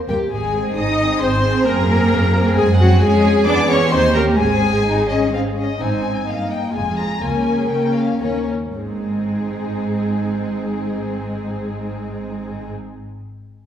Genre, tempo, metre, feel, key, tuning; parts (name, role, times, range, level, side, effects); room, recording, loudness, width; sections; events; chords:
quick classical-period movement for string orchestra; 108-136 BPM; 3/4; rubato; Ab major; A4 = 440 Hz
dark chamber violin section; melody; 0.1-12.7 s; Ab4 to Eb6; -25 LUFS; left 4 dB
dark chamber violin section; second line; 0.1-12.7 s; Bb3 to Eb5; -24 LUFS; left 1 dB
rich chamber viola section; accompaniment; 0.1-12.7 s; Ab3 to Eb5; -21 LUFS; equal
dark chamber double bass section; bass; 0.1-12.7 s; F1 to Gb2; -22 LUFS; right 1 dB
warm studio cello section; bass; 0.1-12.7 s; Db2 to Eb4; -23 LUFS; right 1 dB
wet recital hall reverb, RT60 1.6 s; heard from further back in the room; -16 LUFS; side -9 dB against mid
0.0-5.8 A section; 5.8-8.7 B section; 8.7-11.9 C section
slowing down 5.1-8.7
0.3 Ab; 1.7 Ab7/Gb; 3.0 Db/F; 3.5 E7; 3.9 Eb; 4.4 Ab; 6.7 Fm; 7.2 Bbm/Db; 8.2 Eb5; 8.7 Ab